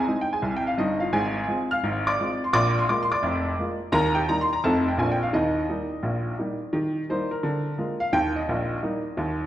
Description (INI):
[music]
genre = jazz, stride piano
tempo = 172 BPM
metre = 4/4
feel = swing 64% on 8ths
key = Eb major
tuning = A4 = 440 Hz
[part]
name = clear upright piano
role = solo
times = 0.0-9.4 s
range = F1 to F6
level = -22 LUFS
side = equal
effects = none
[sound]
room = wet recital hall reverb, RT60 1.6 s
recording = recorded in a church or concert hall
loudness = -22 LUFS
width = side -12 dB against mid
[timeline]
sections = 0.0-6.7 A section; 6.7-9.5 B section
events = none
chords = 0.0 Ab; 1.1 Fm/Ab; 2.5 Bb7; 3.9 Eb; 4.6 F7; 5.0 Bbadd9; 5.3 Eb; 7.4 Bb7/D; 8.1 Eb